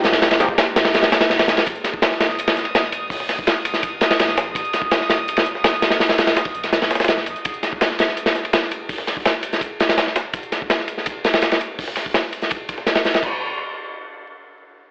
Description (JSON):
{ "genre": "drum and bass, jungle", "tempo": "166 BPM", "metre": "4/4", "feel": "straight", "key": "unclear", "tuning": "A4 = 440 Hz", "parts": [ { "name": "airy breathy pad", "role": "sustained chords", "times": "0.0-1.6 s", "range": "Ab3 to G4", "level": "-31 LUFS", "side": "right 1 dB", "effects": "none" }, { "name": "filtered dub chord stab", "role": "stabs", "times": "0.0-0.5 s", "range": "F3 to G4", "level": "-25 LUFS", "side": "equal", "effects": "none" }, { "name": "soft dub sub bass", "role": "bass", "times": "0.0-7.3 s", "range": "Eb1 to C2", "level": "-43 LUFS", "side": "equal", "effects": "tube saturation" }, { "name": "breakbeat sampler-style drum kit", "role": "drums", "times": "0.0-13.1 s", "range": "hi-hat, snare drum", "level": "-25 LUFS", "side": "equal", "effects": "high-pass filter on hats, high-pass filter on snare" }, { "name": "crunchy breakbeat drum kit", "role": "drums", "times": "0.0-13.3 s", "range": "crash cymbal, hi-hat, kick drum, ride cymbal, snare drum", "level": "-18 LUFS", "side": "equal", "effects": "none" }, { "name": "drifting glass-harmonics texture", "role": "texture", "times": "2.0-7.5 s", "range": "Eb6", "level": "-27 LUFS", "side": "right 1 dB", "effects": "chorus, built-in reverb" } ], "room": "small room reverb", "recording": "dry, gritty hardware recording, vinyl crackle, telephone sound", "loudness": "-16 LUFS", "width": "side -30 dB against mid", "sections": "0.0-1.7 A section; 1.7-13.2 B section; 13.2-14.9 C section", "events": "drop 0.0-1.7", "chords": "0.0 Fm11; 1.7 Bbsus4 (rootless); 6.0 N.C." }